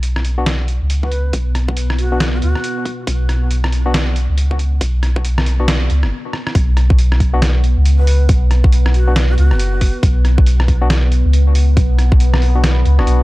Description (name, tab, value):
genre	deep dubstep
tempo	138 BPM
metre	4/4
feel	swing 62% on 16ths, half-time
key	B minor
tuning	A4 = 440 Hz
part	deep dark ambient pad	sustained chords	1.2-13.2 s	B3	-27 LUFS	right 1 dB	chorus, built-in reverb
part	soft dub sub bass	bass	0.0-13.2 s	F#1 to D2	-13 LUFS	equal	transformer saturation
part	trip hop sampler-style drum kit	drums	0.0-13.2 s	hi-hat, rim click, snare drum	-22 LUFS	equal	none
part	barky tine electric piano	stabs	0.4-13.2 s	B3 to F#4	-25 LUFS	left 3 dB	dub echo
part	breathy mellow shakuhachi	melody	1.0-3.0, 8.0-10.0 s	F#4 to B4	-28 LUFS	equal	low-pass filter, dub echo
part	electronic kick drum	drums	1.0-12.2 s	none	-13 LUFS	equal	high-pass filter on kick
room	little or no reverb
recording	dry, gritty hardware recording, cassette tape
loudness	-12 LUFS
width	side -19 dB against mid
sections	0.0-6.6 A section; 6.6-13.2 B section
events	build-up 0.0-6.6; filter sweep on shakuhachi 0.0-6.6; stop 6.1-6.6; drum fill 6.3; drop 6.6-13.2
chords	0.0 N.C.; 6.6 B5